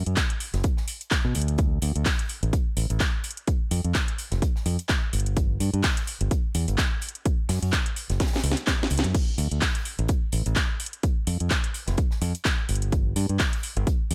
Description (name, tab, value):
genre	piano house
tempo	127 BPM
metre	4/4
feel	swing 56% on 16ths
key	unclear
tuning	A4 = 440 Hz
part	modern bright fingered electric bass	bass	0.0-14.1 s	F1 to B2	-27 LUFS	equal	sidechain pumping
part	house drum kit	drums	0.1-14.1 s	crash cymbal, handclaps, hi-hat, snare drum	-31 LUFS	equal	none
part	crisp fusion drum kit	drums	0.2-14.1 s	hi-hat, snare drum	-43 LUFS	equal	none
part	electronic kick drum	drums	0.2-14.0 s	none	-27 LUFS	equal	none
room	studio reverb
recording	none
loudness	-26 LUFS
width	mono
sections	0.0-14.1 A section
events	drum fill 8.2-9.1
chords	none